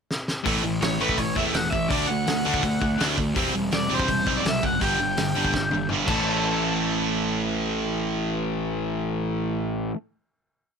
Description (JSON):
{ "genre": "punk rock", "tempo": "166 BPM", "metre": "4/4", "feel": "straight", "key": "unclear", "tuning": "A4 = 440 Hz", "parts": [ { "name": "loose indie drum kit", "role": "drums", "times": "0.1-6.2 s", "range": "crash cymbal, hi-hat, kick drum, snare drum, toms", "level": "-29 LUFS", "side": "equal", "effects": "none" }, { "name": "sludgy distorted guitar", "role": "riff", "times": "0.4-10.0 s", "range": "G2 to D4", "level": "-28 LUFS", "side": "left 15 dB", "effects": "overdrive" }, { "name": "distorted electric guitar", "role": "riff", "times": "0.5-10.0 s", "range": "G2 to D4", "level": "-27 LUFS", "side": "right 15 dB", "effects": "overdrive" }, { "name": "fuzz picked electric bass", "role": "bass", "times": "0.5-9.9 s", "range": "E1 to E2", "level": "-30 LUFS", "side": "equal", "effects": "overdrive" }, { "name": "overdriven electric guitar", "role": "melody", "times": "0.8-9.9 s", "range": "B4 to A5", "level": "-27 LUFS", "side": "left 1 dB", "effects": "none" } ], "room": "little or no reverb", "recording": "none", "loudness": "-22 LUFS", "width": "side -6 dB against mid", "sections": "0.0-0.5 pickup bar; 0.5-6.3 verse; 6.3-9.2 final hit", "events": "drum fill 0.1-0.5, 5.5-6.3", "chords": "0.5 A5; 1.9 D; 3.4 C/E; 4.8 G5; 6.1 A5" }